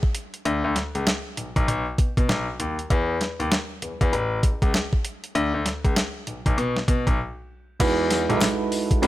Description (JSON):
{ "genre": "R&B, new jack swing", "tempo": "98 BPM", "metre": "4/4", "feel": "swing 62% on 16ths", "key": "E major", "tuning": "A4 = 438 Hz", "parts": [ { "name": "crisp 8-bit digital drum machine", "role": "drums", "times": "0.0-9.1 s", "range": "crash cymbal, hi-hat, kick drum, snare drum, tambourine", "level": "-23 LUFS", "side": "equal", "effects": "overdrive" }, { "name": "bright concert grand piano", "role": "bass", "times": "0.5-9.1 s", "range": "A1 to B2", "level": "-25 LUFS", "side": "left 2 dB", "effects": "none" }, { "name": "soft electric-piano-like synth keys", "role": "accompaniment", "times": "7.8-9.1 s", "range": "G#3 to B4", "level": "-23 LUFS", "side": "right 5 dB", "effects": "chorus" }, { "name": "group handclap", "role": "percussion", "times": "8.4-8.6 s", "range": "none", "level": "-37 LUFS", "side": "left 2 dB", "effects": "none" } ], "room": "little or no reverb", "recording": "none", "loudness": "-21 LUFS", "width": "side -15 dB against mid", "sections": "0.0-7.8 A section; 7.8-9.1 B section", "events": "break 7.2-7.8", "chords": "0.5 Bmadd9; 1.7 B; 2.9 N.C.; 4.1 A; 5.4 Bmadd9; 6.6 N.C.; 7.8 Emaj9" }